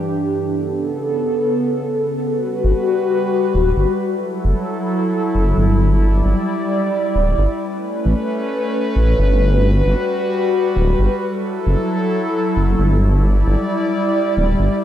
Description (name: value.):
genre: IDM.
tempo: 133 BPM.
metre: 4/4.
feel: straight.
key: G lydian.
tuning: A4 = 440 Hz.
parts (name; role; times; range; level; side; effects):
warbly tape-like pad; sustained chords; 0.0-14.8 s; G2 to D5; -18 LUFS; equal; chorus, built-in reverb, phaser.
dark detuned saw bass; bass; 2.6-14.7 s; D1 to A1; -15 LUFS; equal; tube saturation.
room: little or no reverb.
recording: dry, gritty hardware recording.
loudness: -15 LUFS.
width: side -11 dB against mid.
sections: 0.0-2.2 A section; 2.2-14.8 B section.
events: none.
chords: 0.4 Aadd9; 2.2 Gmaj7; 4.0 F#m7; 5.8 Em7/G; 7.6 Aadd9; 9.4 Gmaj7; 11.2 F#m7; 13.0 Em7/G.